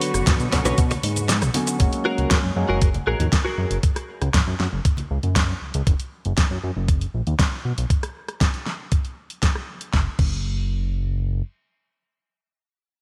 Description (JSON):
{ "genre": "nu-disco, nu disco", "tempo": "118 BPM", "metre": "4/4", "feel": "straight", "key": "F# major", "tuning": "A4 = 440 Hz", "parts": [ { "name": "tine electric piano", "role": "accompaniment", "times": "0.0-2.8 s", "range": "D3 to C#5", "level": "-30 LUFS", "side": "equal", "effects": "overdrive, lush chorus, delay" }, { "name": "muted studio string section", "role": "sustained chords", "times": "0.0-1.8 s", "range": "D3 to C#6", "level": "-36 LUFS", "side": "equal", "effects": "sidechain pumping" }, { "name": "direct-recorded clean electric guitar", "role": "riff", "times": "0.0-3.8 s", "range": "D4 to C#5", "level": "-30 LUFS", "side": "equal", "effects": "analog chorus, low-pass filter, delay" }, { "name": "pop drum kit", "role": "drums", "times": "0.0-10.3 s", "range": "cabasa, crash cymbal, hi-hat, rim click, snare drum", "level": "-28 LUFS", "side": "equal", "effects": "small room ambience" }, { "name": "fat analog bass", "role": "bass", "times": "0.1-11.4 s", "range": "F#1 to B2", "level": "-26 LUFS", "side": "equal", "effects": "sidechain pumping" }, { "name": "congas", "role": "percussion", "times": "0.1-5.3 s", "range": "none", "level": "-34 LUFS", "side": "equal", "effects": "none" }, { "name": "electronic kick drum", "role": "drums", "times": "0.3-10.3 s", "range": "none", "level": "-22 LUFS", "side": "equal", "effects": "small room ambience" } ], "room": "light reverb", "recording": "bright 1980s-style digital production", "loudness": "-22 LUFS", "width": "mono", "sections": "0.0-1.8 A section; 1.8-9.9 B section; 9.9-13.0 C section", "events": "drop 0.0-1.8; kick drops out 1.3-1.8", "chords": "0.0 Bmadd9; 1.8 F#add9; 5.9 N.C." }